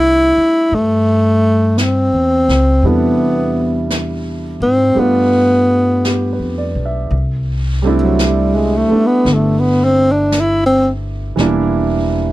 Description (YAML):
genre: jazz ballad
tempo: 56 BPM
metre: 4/4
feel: swing 67% on 8ths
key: C major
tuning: A4 = 440 Hz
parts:
  - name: breathy tenor saxophone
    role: melody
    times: 0.0-10.9 s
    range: F#3 to E4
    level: -13 LUFS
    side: equal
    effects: none
  - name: warm concert grand piano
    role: accompaniment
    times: 0.0-12.3 s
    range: C3 to E5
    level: -19 LUFS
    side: right 4 dB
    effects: none
  - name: upright bass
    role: bass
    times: 0.0-12.3 s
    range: E1 to Ab2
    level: -18 LUFS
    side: left 1 dB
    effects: none
  - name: jazz brush drum kit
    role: drums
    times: 0.7-12.3 s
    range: brushed snare drum, hi-hat, snare drum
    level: -26 LUFS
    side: equal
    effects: none
room: little or no reverb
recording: none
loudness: -12 LUFS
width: side -16 dB against mid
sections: 0.0-7.1 A section; 7.1-12.3 B section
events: tenor saxophone solo 7.1-12.3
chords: 0.0 C69; 5.0 G7; 7.1 C69; 11.4 Em7b5